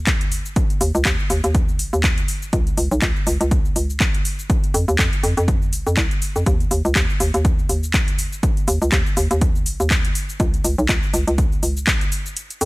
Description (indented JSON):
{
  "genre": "deep house",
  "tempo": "122 BPM",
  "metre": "4/4",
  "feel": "swing 57% on 16ths",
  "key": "unclear",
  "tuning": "A4 = 440 Hz",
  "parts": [
    { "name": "hollow knocking FM bass", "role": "bass", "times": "0.0-12.7 s", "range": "Bb1 to F2", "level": "-20 LUFS", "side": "equal", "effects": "sidechain pumping" },
    { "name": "electronic kick drum", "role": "drums", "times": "0.1-12.0 s", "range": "none", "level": "-20 LUFS", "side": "equal", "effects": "overdrive" },
    { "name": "house drum kit", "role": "drums", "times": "0.1-12.7 s", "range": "handclaps, hi-hat, shaker", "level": "-23 LUFS", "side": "equal", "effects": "overdrive" }
  ],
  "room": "little or no reverb",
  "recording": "none",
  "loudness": "-17 LUFS",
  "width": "side -22 dB against mid",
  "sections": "0.0-12.7 A section",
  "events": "kick drops out 12.4",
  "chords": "none"
}